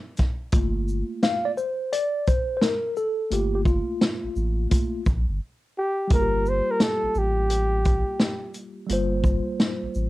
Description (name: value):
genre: hip hop, jazz-hop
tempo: 86 BPM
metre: 4/4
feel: swing 64% on 16ths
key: G minor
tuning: A4 = 437 Hz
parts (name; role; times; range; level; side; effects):
- vintage drum kit; drums; 0.2-10.1 s; hi-hat, kick drum, shaker, snare drum; -23 LUFS; equal; cassette tape
- mellow tine electric piano; accompaniment; 0.5-10.1 s; G3 to F5; -27 LUFS; equal; medium stereo tremolo
- warm sub bass; bass; 0.5-10.1 s; G1 to Bb1; -26 LUFS; equal; none
- mellow flugelhorn; melody; 5.8-8.6 s; G4 to C5; -24 LUFS; equal; none
room: light reverb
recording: home recording on cassette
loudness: -22 LUFS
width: side -17 dB against mid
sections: 0.0-6.1 A section; 6.1-10.1 B section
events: tine electric piano solo 0.0-6.1; break 5.4-6.1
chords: 0.0 Gm9